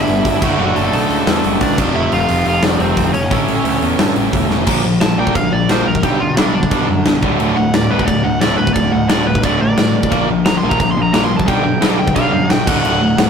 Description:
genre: punk rock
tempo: 176 BPM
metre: 4/4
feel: straight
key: unclear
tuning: A4 = 439 Hz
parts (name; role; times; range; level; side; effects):
- crunchy overdriven guitar; melody; 0.0-13.3 s; C4 to C6; -20 LUFS; equal; none
- distorted electric guitar; riff; 0.0-13.3 s; D2 to Bb3; -20 LUFS; left 8 dB; overdrive
- distorted electric guitar; riff; 0.0-13.3 s; D2 to A4; -19 LUFS; right 8 dB; overdrive
- fuzz picked electric bass; bass; 0.0-13.3 s; D1 to G2; -20 LUFS; right 1 dB; overdrive
- big rock drum kit; drums; 0.1-13.3 s; crash cymbal, hi-hat, kick drum, snare drum; -17 LUFS; left 1 dB; none
room: moderate studio reverb, RT60 0.5 s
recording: rough rehearsal-room recording, tube saturation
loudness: -12 LUFS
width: side -6 dB against mid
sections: 0.0-4.7 A section; 4.7-13.3 B section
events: half time 0.0-4.7; drum fill 4.5; overdriven electric guitar solo 4.7-13.3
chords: 0.4 D/F#; 1.8 F; 3.3 A; 4.7 Bb5; 6.0 G/B; 7.2 D5; 10.1 Bb5; 11.5 G/B; 12.7 D

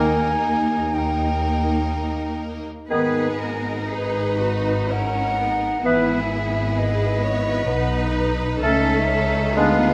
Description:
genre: classical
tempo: 58-66 BPM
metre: 3/4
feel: rubato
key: G# minor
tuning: A4 = 439 Hz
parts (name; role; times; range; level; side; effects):
- clear studio violin section; melody; 0.0-9.9 s; G#4 to C#5; -35 LUFS; equal; none
- clear oboe; second line; 0.0-9.9 s; G#4 to B4; -30 LUFS; equal; none
- rich studio violin section; second line; 0.0-9.9 s; B3 to E4; -33 LUFS; equal; none
- silver concert flute; second line; 0.0-9.9 s; B4 to G#5; -27 LUFS; equal; none
- warm clarinet; second line; 0.0-9.9 s; A#3 to D4; -29 LUFS; equal; none
- clear studio viola section; accompaniment; 0.0-9.9 s; A#3 to D#4; -33 LUFS; equal; none
- warm bassoon; accompaniment; 0.0-9.9 s; D#3 to A3; -27 LUFS; equal; none
- mellow French horn section; sustained chords; 0.0-9.9 s; D#3 to C#4; -29 LUFS; equal; none
- clear studio cello section; bass; 0.0-9.9 s; D#4 to B4; -32 LUFS; equal; none
- rich studio double bass section; bass; 0.0-9.9 s; G#1 to D#2; -27 LUFS; equal; none
room: light reverb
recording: none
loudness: -21 LUFS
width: mono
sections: 0.0-9.9 A section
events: none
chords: 0.0 D#; 2.9 G#m; 5.8 Emaj7/G#; 8.6 A/C#

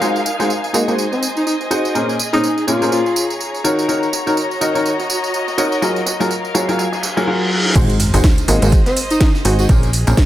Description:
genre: piano house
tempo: 124 BPM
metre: 4/4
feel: swing 58% on 16ths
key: unclear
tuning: A4 = 440 Hz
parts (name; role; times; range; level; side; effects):
- bright upright piano; riff; 0.0-10.2 s; Bb2 to Eb5; -19 LUFS; equal; sidechain pumping, dub echo
- breakbeat sampler-style drum kit; drums; 0.0-10.3 s; ride cymbal, snare drum; -33 LUFS; right 1 dB; none
- house drum kit; drums; 0.0-10.3 s; crash cymbal, hi-hat, snare drum, tambourine; -23 LUFS; right 2 dB; overdrive
- muted studio string section; texture; 0.0-10.3 s; Eb4 to Bb5; -23 LUFS; left 1 dB; sidechain pumping
- breathy tenor saxophone; melody; 0.7-3.3, 8.5-9.7 s; Bb3 to Gb4; -20 LUFS; equal; dub echo
- reverse cymbal and sub drop; sound effects; 7.0-9.7 s; none; -22 LUFS; equal; none
- plucky analog bass; bass; 7.8-10.1 s; Ab1 to Bb1; -15 LUFS; equal; tube saturation, sidechain pumping
- electronic kick drum; drums; 7.8-10.3 s; none; -13 LUFS; equal; overdrive
- tambourine; percussion; 7.8-10.3 s; none; -32 LUFS; right 8 dB; none
room: light reverb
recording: none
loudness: -14 LUFS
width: side -13 dB against mid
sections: 0.0-7.8 A section; 7.8-10.3 B section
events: reverse cymbal 7.0-7.8; drop 7.8-10.3; impact 7.8-9.7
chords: 0.0 Ab7; 1.9 Bbm9; 3.6 Ebm7; 5.8 Gbmaj9; 7.8 Ab7; 9.7 Bbm9

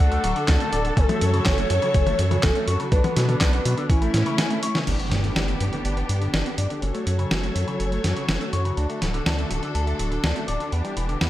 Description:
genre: italo disco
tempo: 123 BPM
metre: 4/4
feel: straight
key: unclear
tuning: A4 = 441 Hz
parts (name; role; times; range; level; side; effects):
- soft octave-layered synth lead; melody; 0.0-4.6 s; E4 to A5; -27 LUFS; equal; chorus, phaser, digital delay
- clear symphonic string section; sustained chords; 0.0-11.3 s; D3 to C#5; -29 LUFS; equal; vintage 12-bit sampler grit, low-pass filter
- electric guitar with an envelope filter; arpeggios; 0.0-11.3 s; C#3 to D5; -30 LUFS; left 3 dB; low-pass filter, tape echo
- round analog bass; bass; 0.0-11.3 s; D1 to B2; -24 LUFS; equal; none
- dusty soul sampler-style drum kit; drums; 0.0-11.3 s; crash cymbal, handclaps, hi-hat, snare drum, toms; -27 LUFS; equal; gated reverb
- electronic kick drum; drums; 0.5-4.0 s; none; -20 LUFS; equal; none
- impact; sound effects; 4.9-6.8 s; none; -32 LUFS; right 1 dB; none
room: light reverb, digital ambience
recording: none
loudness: -20 LUFS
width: side -14 dB against mid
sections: 0.0-4.9 A section; 4.9-11.3 B section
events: break 4.4-4.9; drum fill 4.4-4.9; impact 4.9-6.8; filter sweep on clean electric guitar 4.9-11.3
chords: 0.0 D; 1.0 F#m; 2.9 Bm; 3.9 A; 4.9 G; 6.8 F#m; 8.8 D; 10.7 Em7

